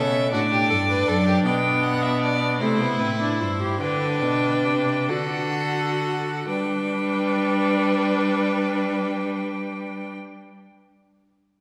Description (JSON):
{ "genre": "classical, baroque-style fugue for string quartet", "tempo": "41-54 BPM (dotted quarters)", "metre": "6/8", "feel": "straight", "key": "G major", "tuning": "A4 = 441 Hz", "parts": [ { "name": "rich violin", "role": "melody", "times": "0.0-10.1 s", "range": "B4 to G5", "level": "-31 LUFS", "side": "equal", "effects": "none" }, { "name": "rich violin", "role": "second line", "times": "0.0-10.1 s", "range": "D4 to B4", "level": "-29 LUFS", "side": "equal", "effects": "none" }, { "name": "clear viola", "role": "accompaniment", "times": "0.0-10.1 s", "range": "A3 to G4", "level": "-27 LUFS", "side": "equal", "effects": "none" }, { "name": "clear cello", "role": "bass", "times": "0.0-10.1 s", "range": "F#2 to G3", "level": "-28 LUFS", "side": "equal", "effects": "none" } ], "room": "wet concert hall reverb, RT60 2.0 s", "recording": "none", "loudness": "-23 LUFS", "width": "mono", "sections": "0.0-6.5 A section; 6.5-9.4 B section", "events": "slowing down 0.3-6.5", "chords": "0.3 D; 1.5 G/B; 2.6 Am7; 3.8 G; 5.1 D; 6.5 G", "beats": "0.33 | 1.45 2.61 | 3.81 5.10 | 6.49 7.93" }